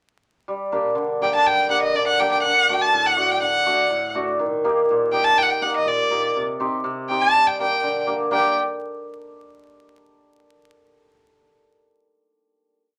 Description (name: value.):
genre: klezmer.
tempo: 123 BPM.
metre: 2/4.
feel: straight.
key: G harmonic minor.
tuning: A4 = 440 Hz.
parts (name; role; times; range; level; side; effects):
hammered dulcimer; accompaniment; 0.5-8.5 s; A2 to G4; -25 LUFS; equal; none.
rich violin; melody; 1.2-8.5 s; D5 to A5; -21 LUFS; equal; none.
room: moderate studio ambience, RT60 0.5 s.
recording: vinyl crackle.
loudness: -20 LUFS.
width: mono.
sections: 0.5-8.3 A section; 8.3-9.3 final chord.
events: none.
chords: 0.5 Gm; 2.4 D; 4.4 Eb; 6.4 Cm; 7.3 Gm.